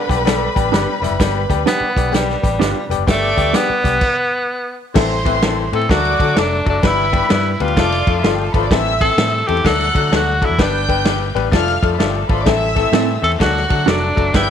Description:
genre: uptempo 1960s-style soul.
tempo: 128 BPM.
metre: 4/4.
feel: swing 64% on 8ths.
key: unclear.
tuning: A4 = 440 Hz.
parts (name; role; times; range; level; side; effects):
bright tenor saxophone; melody; 0.0-14.5 s; D3 to A4; -19 LUFS; right 1 dB; slapback echo.
warm chamber string section; second line; 0.0-14.5 s; E4 to G6; -22 LUFS; right 1 dB; none.
bright baby grand piano; accompaniment; 0.1-14.5 s; E3 to B4; -20 LUFS; left 11 dB; none.
vintage muted fingered electric bass; bass; 0.1-14.5 s; F1 to D3; -22 LUFS; right 1 dB; none.
vintage drum kit; drums; 0.1-14.5 s; crash cymbal, hi-hat, kick drum, ride cymbal, snare drum; -19 LUFS; right 1 dB; none.
mellow electric guitar; stabs; 0.7-3.7, 12.9-14.0 s; C4 to B4; -22 LUFS; right 13 dB; slapback echo.
room: light reverb.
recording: 1960s-style stereo with parts hard left and right.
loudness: -14 LUFS.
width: side -8 dB against mid.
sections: 0.0-5.0 A section; 5.0-14.5 B section.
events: stop 4.0-5.0.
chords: 0.0 G; 5.0 Am; 5.9 D; 6.8 G; 7.8 Dm/F; 8.7 Am; 9.6 D; 10.6 G; 11.5 Dm/F; 12.5 Am; 13.4 D.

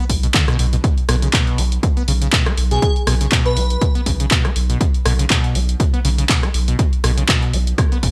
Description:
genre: acid house.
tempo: 121 BPM.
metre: 4/4.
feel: swing 55% on 16ths.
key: unclear.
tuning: A4 = 437 Hz.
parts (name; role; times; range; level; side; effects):
acid bass, saw; riff; 0.0-8.1 s; B2 to B3; -25 LUFS; equal; tube saturation, lush chorus, cassette tape, digital delay.
saturated sub bass; bass; 0.1-8.1 s; F#1 to B1; -21 LUFS; equal; sidechain pumping.
electronic kick drum; drums; 0.1-8.1 s; none; -20 LUFS; equal; none.
punchy analog drum machine; drums; 0.1-8.1 s; handclaps, hi-hat, rim click; -23 LUFS; equal; none.
airy dreamy lead; melody; 2.7-3.8 s; G#4 to B4; -26 LUFS; equal; chorus, digital delay.
room: light reverb.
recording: bright 1980s-style digital production.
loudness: -17 LUFS.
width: mono.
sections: 0.0-8.1 A section.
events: none.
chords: none.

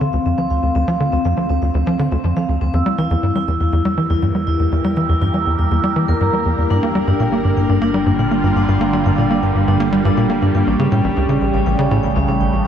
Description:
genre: ambient, sequencer-driven space music.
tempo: 121 BPM.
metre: 4/4.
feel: straight.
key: D minor.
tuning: A4 = 441 Hz.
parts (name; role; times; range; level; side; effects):
phased analog pad; sustained chords; 0.0-12.7 s; C#3 to Bb4; -22 LUFS; right 2 dB; phaser, chorus.
vibraphone with medium mallets; arpeggios; 0.0-12.7 s; C4 to E6; -20 LUFS; moving between left 4 dB and right 3 dB; auto-pan, tape echo.
tight sequencer bass; riff; 0.0-12.6 s; A1 to Bb3; -17 LUFS; equal; lush chorus, tape echo.
warm sub bass; bass; 0.0-12.7 s; G1 to E2; -30 LUFS; equal; none.
room: moderate lush hall reverb, RT60 2.9 s.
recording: none.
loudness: -14 LUFS.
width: side -9 dB against mid.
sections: 0.0-12.7 A section.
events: fade-in on analog synth pad 0.0-12.7.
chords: 0.0 Dm7; 2.7 Edim; 6.7 Gm7; 10.7 A7.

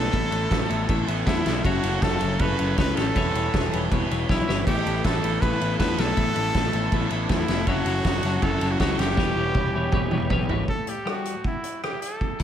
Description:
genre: indie rock.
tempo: 159 BPM.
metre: 4/4.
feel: straight.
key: A mixolydian.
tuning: A4 = 440 Hz.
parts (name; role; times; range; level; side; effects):
bright trumpet; melody; 0.0-12.4 s; D4 to B4; -28 LUFS; right 1 dB; diffuse ambient delay.
twangy electric guitar; riff; 0.0-10.7 s; E2 to G4; -38 LUFS; right 9 dB; none.
twelve-string electric guitar; riff; 0.0-12.4 s; A2 to C#5; -28 LUFS; left 5 dB; phaser.
fuzz picked electric bass; bass; 0.0-10.6 s; E1 to E2; -27 LUFS; equal; overdrive.
loose indie drum kit; drums; 0.1-12.4 s; crash cymbal, hi-hat, kick drum, ride cymbal, rim click, snare drum, toms; -26 LUFS; right 1 dB; none.
room: moderate church reverb, RT60 3.3 s.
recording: dreamy mix soaked in reverb.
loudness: -21 LUFS.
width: side -9 dB against mid.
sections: 0.0-10.7 A section; 10.7-12.4 B section.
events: drum fill 4.3-4.7, 9.2-10.7.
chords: 0.0 Asus2; 1.6 F#m7; 3.2 Em6; 4.7 Asus2; 7.7 F#m7; 9.2 Em6; 10.7 A5.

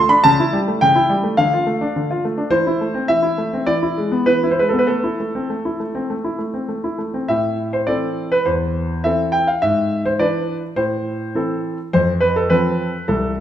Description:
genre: classical-period piano sonatina.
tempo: 104 BPM.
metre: 4/4.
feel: rubato.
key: A minor.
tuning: A4 = 443 Hz.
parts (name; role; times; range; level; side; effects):
clear grand piano; solo; 0.0-13.4 s; C2 to C6; -16 LUFS; equal; none.
room: wet recital hall reverb, RT60 1.8 s.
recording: minimal, uncompressed stereo recording.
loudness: -16 LUFS.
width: side -10 dB against mid.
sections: 0.0-7.3 A section; 7.3-13.4 A section.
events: none.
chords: 0.2 A7/C#; 1.4 Dm; 2.5 Am/E; 3.7 E7; 4.9 Am; 9.6 E7/G#; 10.8 Am; 11.9 F.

